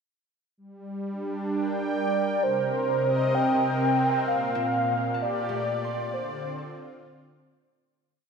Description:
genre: ambient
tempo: 65 BPM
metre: 4/4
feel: straight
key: unclear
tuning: A4 = 443 Hz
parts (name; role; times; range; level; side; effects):
- warm analog pad; sustained chords; 0.6-8.0 s; Bb2 to G5; -28 LUFS; right 1 dB; chorus, shimmer reverb
- warm velvety synth lead; melody; 2.0-7.5 s; C5 to G5; -26 LUFS; equal; chorus, shimmer reverb, tape echo
- concert harp; arpeggios; 4.6-8.3 s; A3 to C6; -40 LUFS; left 3 dB; shimmer reverb, tape echo
room: wet huge ambient reverb, RT60 7.7 s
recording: none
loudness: -24 LUFS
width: side -6 dB against mid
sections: 0.6-8.0 A section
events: fade-out on harp 0.6-8.0; fade-out 4.3-8.0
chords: 0.6 Gm; 2.4 Cm7; 4.3 Bb6; 6.1 Dm7

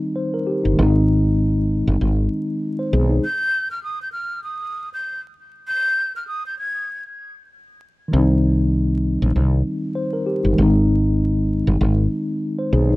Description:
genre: hip hop, boom-bap hip-hop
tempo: 98 BPM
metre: 4/4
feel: swing 55% on 16ths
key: unclear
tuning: A4 = 438 Hz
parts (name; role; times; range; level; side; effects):
- mellow tine electric piano; accompaniment; 0.0-3.3, 8.1-13.0 s; Eb3 to C5; -19 LUFS; left 1 dB; medium stereo tremolo
- woody fretless electric bass; bass; 0.7-3.2, 8.1-13.0 s; G1 to C2; -18 LUFS; equal; none
- breathy mellow jazz flute; melody; 3.2-7.0 s; Eb6 to Ab6; -23 LUFS; equal; tape echo
room: light reverb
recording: rough home demo mix, vinyl crackle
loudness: -18 LUFS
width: side -20 dB against mid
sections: 0.0-13.0 A section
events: break 3.2-8.1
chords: 0.0 Cm; 0.8 Ab; 3.2 N.C.; 8.1 Cm; 10.6 Ab

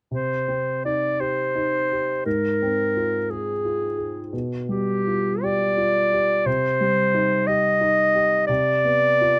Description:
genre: classical, romantic duo for clarinet and grand piano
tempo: 57 BPM (dotted quarters)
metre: 6/8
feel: uneven beats, rubato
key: C minor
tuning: A4 = 440 Hz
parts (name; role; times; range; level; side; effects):
- warm clarinet; melody; 0.1-9.4 s; G4 to Eb5; -23 LUFS; equal; none
- warm baby grand piano; accompaniment; 0.1-9.4 s; Ab2 to Ab4; -28 LUFS; equal; none
room: little or no reverb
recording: close, detailed microphones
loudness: -22 LUFS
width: mono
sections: 0.1-9.4 A section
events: none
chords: 0.1 Cm; 2.3 Fm/Ab; 4.3 G7/B; 6.5 Cm; 8.5 G7/C (rootless)

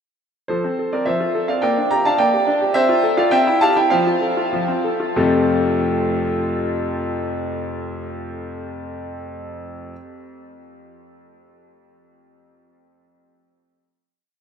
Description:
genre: classical-period piano sonatina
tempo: 94-108 BPM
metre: 2/4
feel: straight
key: F major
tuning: A4 = 440 Hz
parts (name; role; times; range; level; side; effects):
- bright concert grand piano; solo; 0.5-9.9 s; F2 to Bb5; -18 LUFS; equal; none
room: wet huge ambient reverb, RT60 7.7 s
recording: in a vast, echoing space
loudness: -17 LUFS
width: side -7 dB against mid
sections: 0.5-5.2 A section; 5.2-7.7 final chord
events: slowing down 2.2-5.2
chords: 0.5 F; 1.6 Gm/Bb; 2.7 F/C; 3.3 C; 3.9 F

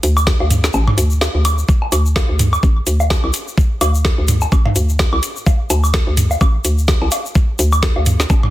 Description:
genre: minimal techno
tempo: 127 BPM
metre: 4/4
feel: swing 57% on 16ths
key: unclear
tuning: A4 = 444 Hz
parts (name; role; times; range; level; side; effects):
- hollow knocking FM bass; bass; 0.0-8.5 s; A1 to D2; -16 LUFS; equal; sidechain pumping
- garage drum kit; drums; 0.0-8.3 s; hi-hat, snare drum; -21 LUFS; equal; overdrive, studio reverb
- egg shaker; percussion; 0.0-8.4 s; none; -26 LUFS; left 5 dB; none
- electronic woodblock and toms; percussion; 0.2-8.5 s; none; -20 LUFS; equal; overdrive, studio reverb
- electronic kick drum; drums; 0.3-8.4 s; none; -15 LUFS; equal; overdrive, studio reverb
room: digital ambience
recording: dense, heavily limited modern master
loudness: -13 LUFS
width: side -15 dB against mid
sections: 0.0-8.5 A section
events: kick drops out 0.7-1.7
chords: none

